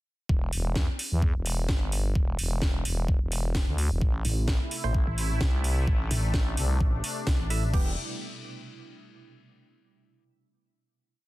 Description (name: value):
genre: bass house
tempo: 129 BPM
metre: 4/4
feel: swing 55% on 16ths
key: E minor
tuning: A4 = 440 Hz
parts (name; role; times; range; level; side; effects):
- growling FM bass; bass; 0.3-8.0 s; E1 to E2; -28 LUFS; equal; overdrive, sidechain pumping
- electronic kick drum; drums; 0.3-7.8 s; none; -26 LUFS; equal; overdrive
- house drum kit; drums; 0.5-7.8 s; crash cymbal, hi-hat, snare drum; -34 LUFS; equal; overdrive
- sweeping resonant pad; sustained chords; 4.0-8.0 s; B2 to E4; -37 LUFS; equal; chorus, sidechain pumping
- pulsing pluck wobble bass; bass; 4.2-7.7 s; A1 to C2; -27 LUFS; equal; chorus, overdrive, sidechain pumping
- percussive organ stab; stabs; 4.8-7.9 s; E3 to E5; -37 LUFS; right 3 dB; chorus, phaser, cassette tape, sidechain pumping, ping-pong delay
room: little or no reverb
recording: dense, heavily limited modern master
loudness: -24 LUFS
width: side -18 dB against mid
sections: 0.3-7.7 drop; 7.7-9.6 final chord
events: drop 0.3-7.7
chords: 0.3 Em; 4.0 Am; 7.7 Em